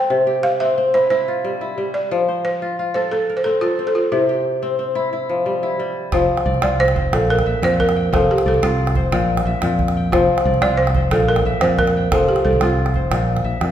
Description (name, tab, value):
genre	west african traditional, West African string and xylophone music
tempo	120 BPM (dotted quarters)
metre	12/8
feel	straight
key	F major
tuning	A4 = 440 Hz
part	balafon	melody	0.0-13.2 s	E4 to G5	-19 LUFS	right 2 dB	none
part	kora	arpeggios	0.0-13.7 s	Bb2 to G5	-20 LUFS	left 2 dB	none
part	fingered electric bass	bass	6.1-13.7 s	F1 to F2	-20 LUFS	equal	none
part	calabash	percussion	6.1-13.7 s	none	-23 LUFS	right 2 dB	none
room	wet recital hall reverb, RT60 1.5 s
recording	recorded in a church or concert hall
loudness	-16 LUFS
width	side -10 dB against mid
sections	0.0-6.1 A section; 6.1-13.7 B section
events	none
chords	0.1 C; 2.1 F; 4.1 C; 6.1 F5; 7.1 Bb5; 8.1 F5; 9.1 Bb5; 10.1 F5; 11.1 Bb5; 12.1 F5; 13.1 Bb5